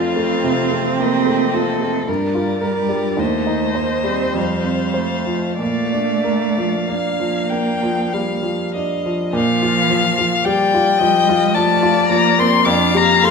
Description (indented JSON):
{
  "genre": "classical, slow romantic movement for piano quartet",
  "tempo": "46-57 BPM",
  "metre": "3/4",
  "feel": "rubato",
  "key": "Bb major",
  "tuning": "A4 = 440 Hz",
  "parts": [
    { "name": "rich violin", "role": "melody", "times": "0.0-13.3 s", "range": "D5 to D6", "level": "-20 LUFS", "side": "left 7 dB", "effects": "none" },
    { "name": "rich cello", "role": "second line", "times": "0.0-13.3 s", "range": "F3 to D4", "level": "-22 LUFS", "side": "right 5 dB", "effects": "none" },
    { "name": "rich violin", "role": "second line", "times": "0.0-13.3 s", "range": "F4 to G5", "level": "-23 LUFS", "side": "left 4 dB", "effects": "none" },
    { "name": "clear grand piano", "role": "accompaniment", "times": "0.0-13.3 s", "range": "Eb2 to C5", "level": "-19 LUFS", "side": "equal", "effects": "none" }
  ],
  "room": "moderate scoring stage reverb, RT60 1.4 s",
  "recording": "minimal, uncompressed stereo recording",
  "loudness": "-15 LUFS",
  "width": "side -5 dB against mid",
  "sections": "0.0-9.3 A section; 9.3-13.3 A section",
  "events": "none",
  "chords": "0.0 F; 2.1 Gm7; 3.2 Cm/Eb; 4.4 F; 5.6 Bb; 12.7 Fsus2"
}